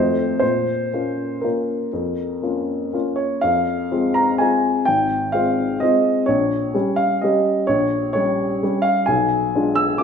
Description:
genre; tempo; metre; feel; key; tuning
classical, piano waltz; 115-136 BPM; 3/4; rubato; Bb minor, F minor from 3.4 s; A4 = 440 Hz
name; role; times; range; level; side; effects
warm upright piano; solo; 0.0-10.0 s; Ab1 to E6; -17 LUFS; left 1 dB; none
room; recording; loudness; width
moderate recital hall reverb, RT60 1.6 s; minimal, uncompressed stereo recording; -17 LUFS; side -7 dB against mid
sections
0.0-3.4 A section; 3.4-10.0 B section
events
none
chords
0.4 Bbm; 3.4 Fm; 4.9 Fm/Ab; 6.3 Gdim/Bb; 9.1 Bdim7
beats
| 0.42 0.93 1.45 | 1.95 2.44 2.94 | 3.44 3.92 4.41 | 4.88 5.34 5.82 | 6.28 6.75 7.22 | 7.68 8.14 8.62 | 9.08 9.54 10.00

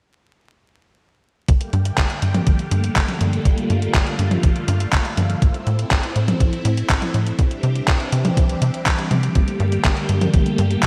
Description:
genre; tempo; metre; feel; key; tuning
italo disco; 122 BPM; 4/4; straight; G dorian; A4 = 439 Hz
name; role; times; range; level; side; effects
phased string machine; sustained chords; 1.5-10.9 s; D3 to G4; -27 LUFS; equal; ensemble chorus, phaser
tight sequencer bass; bass; 1.5-10.9 s; G1 to C3; -23 LUFS; equal; none
clean 12-bit digital drum machine; drums; 1.5-10.9 s; handclaps, hi-hat, toms; -25 LUFS; equal; small room reverb, gated reverb
electronic kick drum; drums; 1.5-10.9 s; none; -20 LUFS; equal; small room reverb
room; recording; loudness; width
moderate lush hall reverb, RT60 2.0 s; bright 1980s-style digital production, vinyl crackle; -19 LUFS; mono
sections
1.5-10.9 A section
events
none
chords
1.5 Gmadd9; 5.4 Am; 7.4 Cadd9; 9.4 Gmadd9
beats
| 1.49 1.98 2.47 2.96 | 3.45 3.94 4.44 4.93 | 5.42 5.91 6.40 6.90 | 7.39 7.88 8.37 8.86 | 9.36 9.85 10.34 10.83

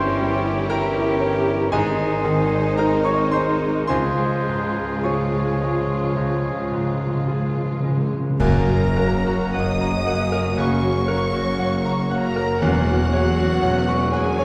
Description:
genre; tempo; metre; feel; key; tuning
classical, romantic movement for piano and orchestra; 50-60 BPM; 4/4; rubato; Db major, F# major from 8.4 s; A4 = 439 Hz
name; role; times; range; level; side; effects
bright grand piano; melody; 0.0-14.4 s; Db2 to Db6; -27 LUFS; equal; none
rich chamber violin section; melody; 0.0-14.4 s; Ab4 to D#6; -34 LUFS; equal; none
mellow hollow concert flute; second line; 0.0-14.4 s; F#4 to Db6; -32 LUFS; equal; none
rich chamber violin section; second line; 0.0-14.4 s; C#4 to F#4; -36 LUFS; equal; none
warm clarinet; second line; 0.0-14.3 s; Ab4 to C#5; -35 LUFS; equal; none
warm oboe; second line; 0.0-14.3 s; Ab4 to F#5; -38 LUFS; equal; none
rich chamber viola section; accompaniment; 0.0-14.4 s; F#3 to Db4; -31 LUFS; equal; none
warm bassoon; accompaniment; 0.0-14.3 s; Eb3 to A#3; -33 LUFS; equal; none
dark French horn section; sustained chords; 0.0-13.0 s; Ab3 to F#4; -32 LUFS; equal; none
bright studio cello section; bass; 0.0-14.4 s; E2 to G4; -31 LUFS; equal; none
clear chamber double bass section; bass; 0.0-14.4 s; E1 to Db2; -31 LUFS; equal; none
mellow tuba; bass; 0.0-14.4 s; E1 to Db2; -31 LUFS; equal; none
timpani; percussion; 3.9-8.4 s; Db3; -28 LUFS; equal; none
mellow trombone section; sustained chords; 8.4-13.0 s; none; barely audible; none; none
clash cymbals and concert bass drum; percussion; 8.4-10.5 s; none; -31 LUFS; equal; none
room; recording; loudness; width
wet scoring stage reverb, RT60 1.7 s; heard from further back in the room; -21 LUFS; mono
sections
0.0-8.4 A section; 8.4-14.4 B section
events
timpani fill 3.9-8.4; band accent 8.4-9.5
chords
0.0 Gdim7; 1.7 Ab; 3.9 Db; 8.4 F#; 12.6 F#7/E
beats
0.70 1.73 2.78 | 3.90 5.04 6.15 7.26 | 8.39 9.54 10.57 11.58 | 12.62 13.62

